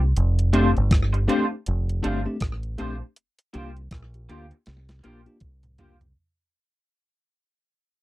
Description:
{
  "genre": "lovers rock reggae",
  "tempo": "80 BPM",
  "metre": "4/4",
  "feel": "swing 59% on 16ths",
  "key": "unclear",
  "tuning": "A4 = 440 Hz",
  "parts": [
    { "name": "deep dub fingered electric bass", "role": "bass", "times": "0.0-6.1 s", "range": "F1 to D2", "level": "-22 LUFS", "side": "equal", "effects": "none" },
    { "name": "crisp 8-bit digital drum machine", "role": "drums", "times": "0.2-6.2 s", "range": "hi-hat, kick drum, rim click, snare drum, toms", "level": "-23 LUFS", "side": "equal", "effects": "slapback echo" },
    { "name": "bell-like tine electric piano", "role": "accompaniment", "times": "0.5-5.9 s", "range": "A3 to G4", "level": "-25 LUFS", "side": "left 3 dB", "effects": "medium stereo tremolo, slapback echo" },
    { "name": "electric guitar through a small old amp", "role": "stabs", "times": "0.5-6.0 s", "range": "A3 to C5", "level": "-29 LUFS", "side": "right 4 dB", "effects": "analog chorus" }
  ],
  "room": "little or no reverb",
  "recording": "dry, close 1970s-style studio recording",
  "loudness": "-20 LUFS",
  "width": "side -17 dB against mid",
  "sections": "0.0-6.2 A section",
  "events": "fade-out 0.0-6.2; drum fill 4.7-6.2",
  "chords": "0.2 F6; 3.2 C7sus4"
}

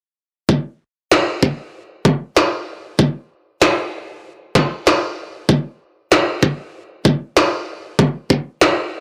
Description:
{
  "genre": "glitch hop",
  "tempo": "96 BPM",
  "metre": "4/4",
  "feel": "swing 57% on 16ths",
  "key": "none",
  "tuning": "none",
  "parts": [
    { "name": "electronic kick drum", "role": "drums", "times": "0.5-8.4 s", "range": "none", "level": "-16 LUFS", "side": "equal", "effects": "overdrive, high-pass filter on kick, high-pass filter on room" },
    { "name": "electronic snare drum", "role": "drums", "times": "1.1-8.8 s", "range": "none", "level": "-17 LUFS", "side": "equal", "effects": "none" }
  ],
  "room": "moderate plate reverb, RT60 1.9 s",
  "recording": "dry, gritty hardware recording",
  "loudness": "-18 LUFS",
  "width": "mono",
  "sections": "0.5-9.0 A section",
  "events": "none",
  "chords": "none"
}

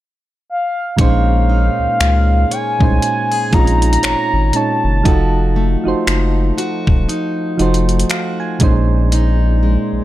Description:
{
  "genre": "contemporary R&B",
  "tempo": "59 BPM",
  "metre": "4/4",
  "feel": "swing 58% on 16ths",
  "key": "Bb minor",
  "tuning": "A4 = 441 Hz",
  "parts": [
    { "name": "mellow horn-like synth lead", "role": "melody", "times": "0.5-6.1 s", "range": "F5 to Bb5", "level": "-18 LUFS", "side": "equal", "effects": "chorus, tape echo" },
    { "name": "soft electric-piano-like synth keys", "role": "accompaniment", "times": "1.0-10.0 s", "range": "Bb2 to Ab5", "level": "-19 LUFS", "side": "right 4 dB", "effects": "chorus" },
    { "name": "picked plugged-in steel-string acoustic guitar", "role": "arpeggios", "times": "1.0-10.0 s", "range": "Bb2 to Db5", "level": "-22 LUFS", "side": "left 2 dB", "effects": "none" },
    { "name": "saturated sub bass", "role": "bass", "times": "1.0-10.0 s", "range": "Eb1 to Db2", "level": "-15 LUFS", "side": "equal", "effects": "none" },
    { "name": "detuned 8-bit digital drum machine", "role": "drums", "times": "1.0-9.4 s", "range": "finger snaps, hi-hat, kick drum", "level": "-16 LUFS", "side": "equal", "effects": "none" }
  ],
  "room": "little or no reverb",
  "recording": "dark, warm production",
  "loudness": "-12 LUFS",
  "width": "side -15 dB against mid",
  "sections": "1.0-10.0 A section",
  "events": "synth keys fill 7.6-9.1",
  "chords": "0.0 N.C.; 1.0 Bbm11; 5.1 F7b9; 8.6 Bbm11"
}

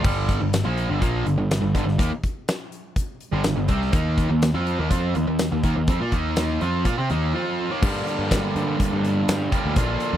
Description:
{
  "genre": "classic rock",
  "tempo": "123 BPM",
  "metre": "4/4",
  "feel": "straight",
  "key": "G minor",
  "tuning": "A4 = 443 Hz",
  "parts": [
    { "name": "distorted electric guitar", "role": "riff", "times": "0.0-10.2 s", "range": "G2 to G4", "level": "-24 LUFS", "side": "right 1 dB", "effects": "overdrive" },
    { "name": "fuzz picked electric bass", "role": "bass", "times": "0.0-10.2 s", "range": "G1 to C3", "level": "-25 LUFS", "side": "equal", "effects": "overdrive" },
    { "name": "huge arena drum kit", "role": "drums", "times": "0.0-10.1 s", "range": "crash cymbal, hi-hat, kick drum, snare drum, tambourine", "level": "-25 LUFS", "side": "equal", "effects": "none" }
  ],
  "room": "little or no reverb",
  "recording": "dry, close 1970s-style studio recording",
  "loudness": "-20 LUFS",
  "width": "side -11 dB against mid",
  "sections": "0.0-7.8 A section; 7.8-10.2 B section",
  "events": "break 7.3-7.8",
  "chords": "0.0 Gm; 3.9 Eb5; 7.8 Gm"
}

